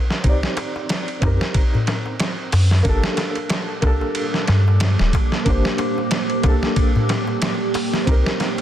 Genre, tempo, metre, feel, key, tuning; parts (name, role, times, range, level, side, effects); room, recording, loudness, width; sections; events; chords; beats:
trip hop; 92 BPM; 4/4; swing 56% on 16ths; G minor; A4 = 440 Hz
felt-muted upright piano; accompaniment; 0.0-8.6 s; Bb3 to D5; -26 LUFS; right 1 dB; tremolo, vintage 12-bit sampler grit, low-pass filter, tape echo
dusty soul sampler-style drum kit; drums; 0.1-8.6 s; hi-hat, kick drum, ride cymbal, snare drum; -21 LUFS; equal
darbuka; percussion; 0.1-8.6 s; -26 LUFS; left 2 dB
soft dub sub bass; bass; 0.2-8.2 s; D1 to G2; -17 LUFS; equal
deep dark ambient pad; sustained chords; 3.6-8.6 s; Bb3 to D6; -24 LUFS; right 1 dB; chorus, built-in reverb
digital ambience; dense, heavily limited modern master; -17 LUFS; side -11 dB against mid
0.0-8.6 A section
0.0 Cm7; 2.9 Gmadd9; 8.1 Cm7
| 0.24 0.90 1.55 2.20 | 2.85 3.51 4.16 4.81 | 5.46 6.11 6.77 7.42 | 8.07